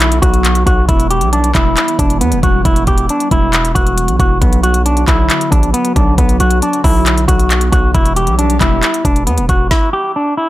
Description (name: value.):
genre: hip hop, trap.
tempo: 136 BPM.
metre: 4/4.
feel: half-time.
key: unclear.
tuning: A4 = 437 Hz.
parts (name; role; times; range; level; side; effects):
electric guitar with an envelope filter; melody; 0.0-10.5 s; B3 to G4; -15 LUFS; equal; spring reverb.
hollow soft pad; sustained chords; 0.0-9.7 s; D3 to G4; -22 LUFS; right 1 dB; ensemble chorus.
distorted 808-style bass; bass; 0.0-9.7 s; E1 to E2; -15 LUFS; equal; distortion.
trap drum kit; drums; 0.0-9.8 s; handclaps, hi-hat, kick drum, snare drum; -14 LUFS; equal; none.
downlifter; sound effects; 0.0-0.9 s; none; barely audible; none; none.
room: digital ambience.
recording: none.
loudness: -10 LUFS.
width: side -15 dB against mid.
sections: 0.0-10.5 A section.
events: none.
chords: 0.0 Bm; 0.9 Em; 4.4 Bm; 7.9 Em.